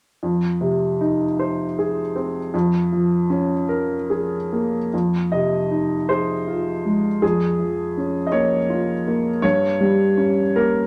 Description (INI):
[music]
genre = neoclassical minimalist piano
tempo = 47-55 BPM (dotted quarters)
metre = 6/8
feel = rubato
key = F minor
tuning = A4 = 441 Hz
[part]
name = dark upright piano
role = solo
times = 0.2-10.9 s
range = F2 to Eb5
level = -21 LUFS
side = equal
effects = none
[sound]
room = wet small room reverb, RT60 0.5 s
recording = none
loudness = -21 LUFS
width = mono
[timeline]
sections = 0.2-4.9 A section; 4.9-10.9 B section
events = none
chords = 0.2 Fm7; 2.5 Bbm7/F; 4.9 Fm7; 7.2 Bbm7/F; 9.4 Eb7/G (rootless)